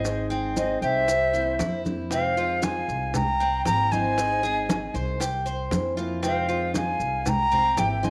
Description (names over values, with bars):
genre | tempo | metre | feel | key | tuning
latin, Cuban son and guajira | 116 BPM | 4/4 | straight | F minor | A4 = 440 Hz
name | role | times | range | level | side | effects
jazz flute | melody | 0.0-8.1 s | Eb5 to Bb5 | -27 LUFS | equal | none
mellow hollow jazz flute | second line | 0.0-8.1 s | C5 to G5 | -34 LUFS | equal | none
fingerpicked steel-string acoustic guitar | accompaniment | 0.0-8.1 s | C3 to Ab4 | -36 LUFS | equal | none
Cuban tres | arpeggios | 0.0-8.1 s | C4 to C5 | -34 LUFS | equal | none
upright bass | bass | 0.0-8.1 s | Ab1 to F2 | -34 LUFS | equal | none
bongos | percussion | 0.1-8.0 s | none | -36 LUFS | equal | none
congas | percussion | 0.1-8.1 s | none | -33 LUFS | equal | none
maracas | percussion | 0.1-8.1 s | none | -40 LUFS | equal | none
room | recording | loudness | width
moderate echo chamber reverb, RT60 1.4 s, small room ambience | none | -25 LUFS | mono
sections
0.0-2.1 A section; 2.1-8.1 B section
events
none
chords
0.1 Ab; 1.1 C7; 2.1 Fm7; 3.1 C7; 4.2 Ab; 5.2 C7; 6.2 Fm7; 7.3 C7